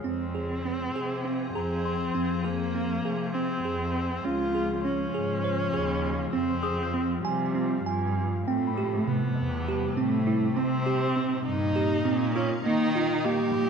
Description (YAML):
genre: contemporary instrumental, chamber music in an uneven meter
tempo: 201 BPM (eighths)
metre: 7/8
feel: straight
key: F minor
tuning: A4 = 438 Hz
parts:
  - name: evolving wavetable pad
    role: sustained chords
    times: 0.0-13.7 s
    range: Bb2 to Ab4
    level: -33 LUFS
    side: left 5 dB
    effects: chorus, built-in reverb
  - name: bell-like tine electric piano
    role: arpeggios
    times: 0.0-13.7 s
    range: C3 to Ab5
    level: -30 LUFS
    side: right 4 dB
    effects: none
  - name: rich cello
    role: bass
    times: 0.0-13.7 s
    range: Db2 to Eb3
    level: -31 LUFS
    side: right 1 dB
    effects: none
  - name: dark viola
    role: second line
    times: 0.1-13.7 s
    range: G3 to G4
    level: -31 LUFS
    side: left 1 dB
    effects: none
  - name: small celesta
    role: texture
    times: 1.6-13.7 s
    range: F5 to G6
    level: -38 LUFS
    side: left 10 dB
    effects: none
room: moderate concert hall reverb, RT60 2.0 s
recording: dark, warm production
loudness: -25 LUFS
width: side -6 dB against mid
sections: 0.0-8.5 A section; 8.5-13.7 B section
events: none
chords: 0.0 Fm; 4.2 Db; 6.3 Fmadd9; 8.5 Am7; 10.6 Cm7; 12.7 Ebadd9